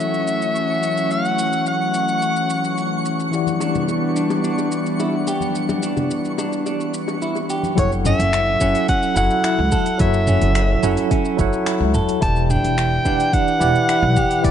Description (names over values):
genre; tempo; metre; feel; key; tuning
sunset chillout; 108 BPM; 4/4; straight; unclear; A4 = 439 Hz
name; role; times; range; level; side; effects
edgy soprano saxophone; melody; 0.0-3.0, 7.8-14.5 s; C#5 to A5; -21 LUFS; equal; digital delay
tine electric piano; accompaniment; 0.0-14.5 s; E3 to G5; -24 LUFS; moving between left 8 dB and right 6 dB; medium stereo tremolo, auto-pan, digital delay
airy breathy pad; sustained chords; 0.0-7.7 s; E3 to F#5; -22 LUFS; left 2 dB; chorus
deep house drum kit; drums; 0.0-14.5 s; finger snaps, hi-hat, shaker, toms; -27 LUFS; right 1 dB; none
twinkling granular texture; texture; 0.0-7.8 s; C#6 to C#7; -32 LUFS; right 1 dB; built-in reverb
congas and bongos; percussion; 3.5-7.7 s; none; -28 LUFS; left 4 dB; none
clean electric guitar; arpeggios; 3.6-14.4 s; C#4 to A4; -26 LUFS; right 3 dB; spring reverb, digital delay
upright bass; bass; 7.8-14.5 s; E1 to C#2; -20 LUFS; equal; tube saturation
electronic kick drum; drums; 7.8-14.5 s; none; -21 LUFS; equal; none
room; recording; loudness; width
light reverb; nothing above 10.5 kHz; -17 LUFS; side -9 dB against mid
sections
0.0-7.8 A section; 7.8-14.5 B section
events
none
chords
0.0 F#m7; 3.3 Em9; 7.8 F#m7; 12.2 Em9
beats
0.00 0.56 | 1.11 1.67 2.22 2.78 | 3.33 3.89 4.44 5.00 | 5.55 6.11 6.67 7.22 | 7.78 8.33 8.89 9.44 | 10.00 10.55 11.11 11.67 | 12.22 12.78 13.33 13.89 | 14.44